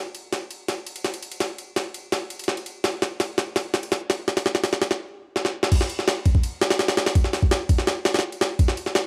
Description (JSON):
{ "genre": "drum and bass", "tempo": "167 BPM", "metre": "4/4", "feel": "straight", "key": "none", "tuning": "none", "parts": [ { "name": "jungle sampler-style drum kit", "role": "drums", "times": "0.1-9.0 s", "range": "crash cymbal, kick drum, ride cymbal, snare drum", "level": "-24 LUFS", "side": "equal", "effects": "small room reverb" } ], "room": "light reverb", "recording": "vinyl crackle", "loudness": "-24 LUFS", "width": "mono", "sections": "0.0-5.7 A section; 5.7-9.1 B section", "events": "build-up 0.0-5.7; drum fill 0.0-5.0, 5.4-5.7; stop 5.0-5.7; drop 5.7-9.1", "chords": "none" }